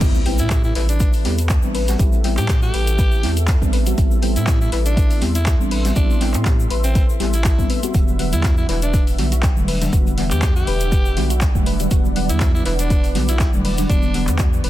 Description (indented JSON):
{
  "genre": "deep house",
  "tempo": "121 BPM",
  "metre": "4/4",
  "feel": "swing 55% on 16ths",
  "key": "A dorian",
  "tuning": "A4 = 442 Hz",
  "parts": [
    { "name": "warm analog pad", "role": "sustained chords", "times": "0.0-14.7 s", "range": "D4 to C6", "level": "-32 LUFS", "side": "equal", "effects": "chorus, sidechain pumping" },
    { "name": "soft round pluck", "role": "arpeggios", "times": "0.0-14.7 s", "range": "F#4 to A5", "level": "-31 LUFS", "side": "left 2 dB", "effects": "chorus, sidechain pumping, dub echo" },
    { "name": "mellow FM electric piano", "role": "stabs", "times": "0.0-14.7 s", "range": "D3 to F#4", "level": "-24 LUFS", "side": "equal", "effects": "chorus, phaser, sidechain pumping, ping-pong delay" },
    { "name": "round analog bass", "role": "bass", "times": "0.0-14.7 s", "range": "E1 to A2", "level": "-21 LUFS", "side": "equal", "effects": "sidechain pumping" },
    { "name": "electronic kick drum", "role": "drums", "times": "0.0-14.5 s", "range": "none", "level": "-17 LUFS", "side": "equal", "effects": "none" },
    { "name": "jazz brush drum kit", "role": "drums", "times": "0.0-14.7 s", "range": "hi-hat, snare drum", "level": "-36 LUFS", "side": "equal", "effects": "none" },
    { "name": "punchy analog drum machine", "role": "drums", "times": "0.0-14.7 s", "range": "crash cymbal, handclaps, hi-hat", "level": "-28 LUFS", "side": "left 1 dB", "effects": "none" },
    { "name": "egg shaker", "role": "percussion", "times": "0.0-14.6 s", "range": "none", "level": "-34 LUFS", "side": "left 2 dB", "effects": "none" },
    { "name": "impact", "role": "sound effects", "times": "0.0-2.0 s", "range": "none", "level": "-27 LUFS", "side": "equal", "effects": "none" },
    { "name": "raspy alto saxophone", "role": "melody", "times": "0.4-14.3 s", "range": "C4 to G4", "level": "-28 LUFS", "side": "equal", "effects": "ping-pong delay" }
  ],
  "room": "small room ambience",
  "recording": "dense, heavily limited modern master",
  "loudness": "-15 LUFS",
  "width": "side -14 dB against mid",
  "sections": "0.0-14.7 A section",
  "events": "drop 0.0-14.7; impact 0.0-2.0",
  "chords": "0.0 Am9; 7.9 Em9",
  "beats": "| 0.01 0.51 1.00 1.50 | 2.00 2.49 2.99 3.48 | 3.98 4.47 4.97 5.47 | 5.96 6.46 6.95 7.45 | 7.95 8.44 8.94 9.43 | 9.93 10.43 10.92 11.42 | 11.91 12.41 12.90 13.40 | 13.90 14.39"
}